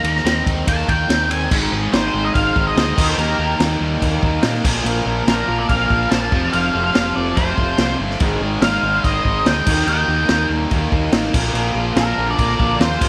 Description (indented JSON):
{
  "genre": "classic rock",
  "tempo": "143 BPM",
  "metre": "4/4",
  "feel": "straight",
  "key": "unclear",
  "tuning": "A4 = 439 Hz",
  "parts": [
    { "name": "octave-fuzz lead guitar", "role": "melody", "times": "0.0-13.1 s", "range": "Bb4 to Bb5", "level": "-23 LUFS", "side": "equal", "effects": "distortion, slapback echo" },
    { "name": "overdriven electric guitar", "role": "riff", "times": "0.0-13.1 s", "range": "F2 to Bb4", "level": "-28 LUFS", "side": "equal", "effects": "none" },
    { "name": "raw garage guitar", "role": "riff", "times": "0.0-13.1 s", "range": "F2 to Eb4", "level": "-28 LUFS", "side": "equal", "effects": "overdrive" },
    { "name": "fingered electric bass", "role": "bass", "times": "0.0-13.1 s", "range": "F1 to Bb2", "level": "-25 LUFS", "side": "equal", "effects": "none" },
    { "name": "vintage drum kit", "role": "drums", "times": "0.0-13.1 s", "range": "crash cymbal, kick drum, ride cymbal, snare drum", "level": "-22 LUFS", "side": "equal", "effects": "none" },
    { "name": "raw garage guitar", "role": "riff", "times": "1.5-13.1 s", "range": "F2 to Eb4", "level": "-29 LUFS", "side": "equal", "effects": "overdrive, spring reverb" },
    { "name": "octave-fuzz lead guitar", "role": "second line", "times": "1.9-13.1 s", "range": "F4 to F5", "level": "-33 LUFS", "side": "equal", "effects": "distortion" }
  ],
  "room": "light reverb, studio reverb",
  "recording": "none",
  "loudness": "-18 LUFS",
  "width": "mono",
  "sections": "0.0-1.5 A section; 1.5-13.1 B section",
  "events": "lead electric guitar solo 0.0-1.5",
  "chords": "0.0 Eb6; 1.5 Ab; 3.0 Eb; 4.6 Bb; 6.3 F; 8.2 Ab; 9.7 Eb; 11.3 Bb",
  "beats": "0.25 0.67 1.09 | 1.51 1.93 2.35 2.77 | 3.18 3.60 4.02 4.44 | 4.86 5.28 5.69 6.11 | 6.53 6.95 7.37 7.79 | 8.21 8.62 9.04 9.46 | 9.88 10.30 10.72 11.13 | 11.55 11.97 12.39 12.81"
}